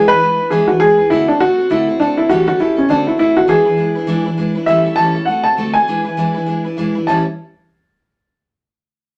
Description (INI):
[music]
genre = rock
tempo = 201 BPM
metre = 4/4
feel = swing 59% on 8ths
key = unclear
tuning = A4 = 440 Hz
[part]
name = dark upright piano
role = melody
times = 0.0-7.2 s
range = C#4 to A5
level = -15 LUFS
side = equal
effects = none
[part]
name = picked steel-string acoustic guitar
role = accompaniment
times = 0.0-7.2 s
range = A2 to B4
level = -21 LUFS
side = equal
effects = none
[sound]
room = moderate studio reverb, RT60 0.6 s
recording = none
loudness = -15 LUFS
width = mono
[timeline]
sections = 0.0-4.7 A section; 4.7-7.1 B section; 7.1-8.3 C section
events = none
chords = 0.0 E7; 1.1 D7; 2.3 A7; 2.9 D7; 3.5 E7; 4.7 A7; 5.3 D7; 5.9 E7; 7.1 A9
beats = 0.21 0.51 0.81 | 1.11 1.41 1.70 2.00 | 2.30 2.60 2.90 3.19 | 3.49 3.79 4.09 4.39 | 4.68 4.98 5.28 5.58 | 5.88 6.18 6.47 6.77 | 7.07